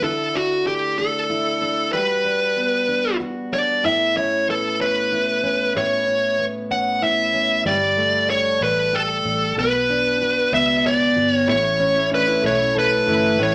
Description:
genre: six-eight pop ballad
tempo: 63 BPM (dotted quarters)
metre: 6/8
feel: straight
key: unclear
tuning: A4 = 439 Hz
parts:
  - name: smooth overdriven lead guitar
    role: melody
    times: 0.0-13.5 s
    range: F#4 to F#5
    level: -21 LUFS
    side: equal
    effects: none
  - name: picked steel-string acoustic guitar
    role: accompaniment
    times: 0.0-13.5 s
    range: A2 to A4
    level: -27 LUFS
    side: equal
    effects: none
  - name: vintage muted fingered electric bass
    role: bass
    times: 7.7-13.5 s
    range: G1 to C#2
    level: -33 LUFS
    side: equal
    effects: none
  - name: direct-recorded clean electric guitar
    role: arpeggios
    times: 11.5-13.5 s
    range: A2 to E4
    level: -30 LUFS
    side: equal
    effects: none
room: wet studio reverb, RT60 0.6 s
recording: none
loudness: -20 LUFS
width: mono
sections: 0.0-7.7 A section; 7.7-13.5 B section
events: none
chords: 0.0 Dsus2; 1.9 Gmaj7; 3.8 Aadd9; 7.7 Gsus2; 9.6 Bmadd9; 11.5 A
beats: | 0.03 0.98 | 1.93 2.89 | 3.84 4.80 | 5.75 6.71 | 7.66 8.62 | 9.57 10.53 | 11.48 12.44 | 13.40

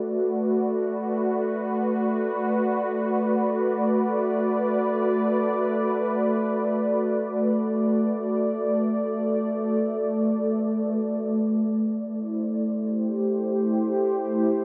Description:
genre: ambient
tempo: free time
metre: none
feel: none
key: unclear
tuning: A4 = 440 Hz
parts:
  - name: warm analog pad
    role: solo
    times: 0.0-14.6 s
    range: A3 to D5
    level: -25 LUFS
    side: equal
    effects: chorus, diffuse ambient delay
room: wet huge ambient reverb, RT60 7.9 s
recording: dreamy mix soaked in reverb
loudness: -25 LUFS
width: mono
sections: 0.0-11.4 A section; 11.4-14.6 B section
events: none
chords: 0.0 Bm/A; 11.4 Am7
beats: free time

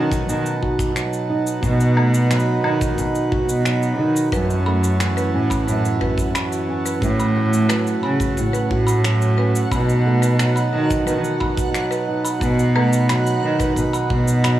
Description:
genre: folktronica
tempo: 89 BPM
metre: 4/4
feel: straight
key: B mixolydian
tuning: A4 = 438 Hz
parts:
  - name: pedal harmonium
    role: sustained chords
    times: 0.0-14.6 s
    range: D#4 to B5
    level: -26 LUFS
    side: right 4 dB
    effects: none
  - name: flamenco guitar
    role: arpeggios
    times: 0.0-14.6 s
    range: F#2 to F#4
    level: -22 LUFS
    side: right 1 dB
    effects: low-pass filter, digital delay
  - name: rich cello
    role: bass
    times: 0.0-14.6 s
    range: F#2 to D#3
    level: -20 LUFS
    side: equal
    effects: none
  - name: electronic shaker, finger snaps and woodblock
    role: drums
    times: 0.1-14.6 s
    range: none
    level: -28 LUFS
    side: left 1 dB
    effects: none
  - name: kick drum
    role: drums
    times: 0.1-14.2 s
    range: none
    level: -25 LUFS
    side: equal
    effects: none
  - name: buzzing marimba with hard mallets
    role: second line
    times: 4.3-14.6 s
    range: B4 to B5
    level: -29 LUFS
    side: equal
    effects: vintage 12-bit sampler grit, digital delay
  - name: backwards swelling texture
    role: texture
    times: 5.4-14.6 s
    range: F#4 to F#5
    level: -33 LUFS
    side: right 1 dB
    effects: built-in reverb
room: light reverb, studio ambience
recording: small room ambience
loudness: -17 LUFS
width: side -13 dB against mid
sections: 0.0-14.6 A section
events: none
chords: 0.0 B7; 4.3 F#m7; 7.0 A6; 9.7 B7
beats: 0.28 0.96 | 1.63 2.31 2.98 3.65 | 4.33 5.00 5.68 6.35 | 7.02 7.70 8.37 9.05 | 9.72 10.39 11.07 11.74 | 12.42 13.09 13.77 14.44

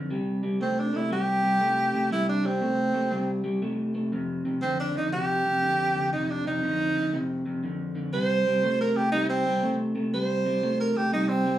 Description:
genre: blues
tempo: 120 BPM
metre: 4/4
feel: swing 65% on 8ths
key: unclear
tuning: A4 = 439 Hz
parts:
  - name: electric guitar through a small old amp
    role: riff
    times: 0.0-11.6 s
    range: F2 to A3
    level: -27 LUFS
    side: equal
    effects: spring reverb
  - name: clear tenor saxophone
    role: melody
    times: 0.6-11.6 s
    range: C4 to C5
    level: -25 LUFS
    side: right 2 dB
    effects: none
room: moderate studio reverb, RT60 0.8 s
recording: band playing live in one room, small room ambience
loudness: -24 LUFS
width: side -12 dB against mid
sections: 0.0-11.6 A section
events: none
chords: 0.1 C5; 4.1 F5; 8.1 C5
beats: | 0.10 0.61 1.11 1.61 | 2.11 2.61 3.12 3.62 | 4.12 4.62 5.12 5.62 | 6.12 6.63 7.13 7.63 | 8.13 8.63 9.13 9.63 | 10.13 10.63 11.13

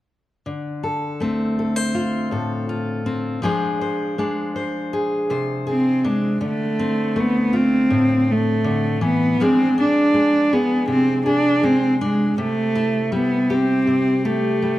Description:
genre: folk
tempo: 80 BPM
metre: 4/4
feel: straight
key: unclear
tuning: A4 = 440 Hz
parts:
  - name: fingerpicked steel-string acoustic guitar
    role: accompaniment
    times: 0.5-14.8 s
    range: A2 to C5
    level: -22 LUFS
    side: left 2 dB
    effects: none
  - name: dark cello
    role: melody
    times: 5.7-14.8 s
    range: Ab3 to D4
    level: -17 LUFS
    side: right 1 dB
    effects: none
room: moderate recital hall reverb, RT60 1.8 s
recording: close, detailed microphones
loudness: -17 LUFS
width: side -15 dB against mid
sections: 0.5-6.4 A section; 6.4-14.8 B section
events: none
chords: 0.5 Dm7; 3.4 Fm6; 6.4 Dm7; 9.4 Fm6; 12.4 C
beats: | 0.45 1.20 1.94 2.69 | 3.43 4.18 4.92 5.67 | 6.41 7.16 7.90 8.65 | 9.39 10.14 10.88 11.63 | 12.37 13.12 13.86 14.61

